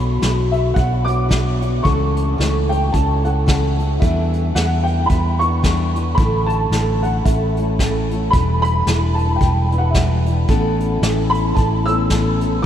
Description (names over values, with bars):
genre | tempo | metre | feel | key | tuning
acoustic folk duo or small band | 111 BPM | 4/4 | swing 58% on 8ths | unclear | A4 = 439 Hz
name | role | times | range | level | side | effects
dark upright piano | melody | 0.0-12.7 s | E5 to E6 | -22 LUFS | equal | ensemble chorus, ping-pong delay
picked steel-string acoustic guitar | accompaniment | 0.0-12.7 s | A2 to C#5 | -22 LUFS | left 2 dB | none
fingered electric bass | bass | 0.0-12.7 s | E1 to E2 | -18 LUFS | equal | none
vintage brush drum kit | drums | 0.2-12.5 s | hi-hat, kick drum, snare drum | -22 LUFS | equal | none
room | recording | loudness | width
moderate huge ambient reverb, RT60 7.9 s | dreamy mix soaked in reverb | -15 LUFS | side -10 dB against mid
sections
0.0-12.7 A section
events
none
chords
0.0 Bmadd9; 1.9 A/C#; 4.0 Em7; 6.2 Asus4; 7.3 A; 8.3 Em7; 10.5 Aadd9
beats
0.22 0.77 1.31 | 1.85 2.39 2.94 3.48 | 4.02 4.56 5.10 5.64 | 6.18 6.72 7.26 7.80 | 8.34 8.87 9.41 9.95 | 10.49 11.03 11.56 12.10 | 12.64